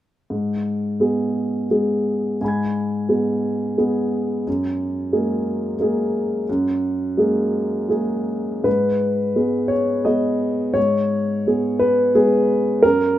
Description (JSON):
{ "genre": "neoclassical minimalist piano", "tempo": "86 BPM", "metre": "3/4", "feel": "rubato", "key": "G# minor", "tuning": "A4 = 440 Hz", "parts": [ { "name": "dark grand piano", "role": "solo", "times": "0.3-13.2 s", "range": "F#2 to G#6", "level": "-18 LUFS", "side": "equal", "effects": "none" } ], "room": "light reverb, small room ambience", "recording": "rough home demo mix", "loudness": "-18 LUFS", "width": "side -13 dB against mid", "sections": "0.3-8.7 A section; 8.7-13.2 B section", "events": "none", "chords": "0.3 G#m; 4.5 F#add9; 8.7 G#m", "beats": "| 0.30 1.01 1.71 | 2.41 3.09 3.78 | 4.46 5.13 5.79 | 6.47 7.17 7.89 | 8.66 9.37 10.07 | 10.76 11.47 12.14 | 12.83" }